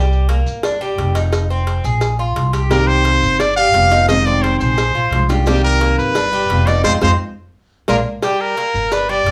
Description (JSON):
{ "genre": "latin, Cuban son and guajira", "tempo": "174 BPM", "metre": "4/4", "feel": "straight", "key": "unclear", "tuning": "A4 = 441 Hz", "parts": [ { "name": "Cuban tres", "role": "arpeggios", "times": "0.0-9.3 s", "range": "G3 to Ab4", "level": "-23 LUFS", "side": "equal", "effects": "none" }, { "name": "upright bass", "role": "bass", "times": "0.0-9.3 s", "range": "F1 to F2", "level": "-20 LUFS", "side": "equal", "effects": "none" }, { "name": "maracas", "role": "percussion", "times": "0.1-9.3 s", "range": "none", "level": "-38 LUFS", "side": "equal", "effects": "none" }, { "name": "cowbell", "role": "percussion", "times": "0.3-9.3 s", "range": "none", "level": "-26 LUFS", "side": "equal", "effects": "none" }, { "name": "bright trumpet", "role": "melody", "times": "2.7-9.3 s", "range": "G4 to F5", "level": "-18 LUFS", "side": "equal", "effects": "none" }, { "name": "nylon-string guitar", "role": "accompaniment", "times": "2.7-8.0 s", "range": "C3 to G4", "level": "-23 LUFS", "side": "equal", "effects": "none" } ], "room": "moderate studio reverb, RT60 0.5 s", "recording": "small room ambience", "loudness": "-16 LUFS", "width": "mono", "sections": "0.0-8.2 A section; 8.2-9.3 A section", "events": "band accent 6.8-8.2; drum fill 7.7-8.2", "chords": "0.0 C5; 0.6 G5; 1.3 Fm7; 2.0 Bb5; 2.7 Cm7; 3.4 G7; 4.1 Fm7; 4.8 Bb7; 5.5 Cm7; 6.2 G7; 6.8 Fm7; 7.5 Bb7; 8.2 Gm" }